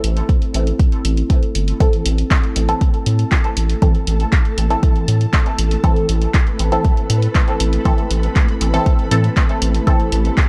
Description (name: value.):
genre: dub techno.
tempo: 119 BPM.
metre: 4/4.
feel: straight.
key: A minor.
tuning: A4 = 440 Hz.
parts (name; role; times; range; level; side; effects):
warbly tape-like pad; sustained chords; 0.0-10.5 s; A3 to A4; -29 LUFS; equal; chorus, built-in reverb, sidechain pumping.
round analog bass; bass; 0.0-10.3 s; G1 to A2; -19 LUFS; equal; sidechain pumping.
punchy analog drum machine; drums; 0.0-10.5 s; handclaps, hi-hat; -26 LUFS; equal; none.
electronic kick drum; drums; 0.3-10.5 s; none; -17 LUFS; equal; none.
filtered dub chord stab; stabs; 1.8-10.1 s; E3 to A4; -25 LUFS; equal; chorus, phaser, vintage 12-bit sampler grit, sidechain pumping, dub echo.
flickering grainy texture; texture; 2.3-10.5 s; A3 to B4; -32 LUFS; equal; built-in reverb, sidechain pumping.
room: light reverb.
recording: none.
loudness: -16 LUFS.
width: mono.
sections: 0.0-1.8 A section; 1.8-10.5 A section.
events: none.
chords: 0.0 Am.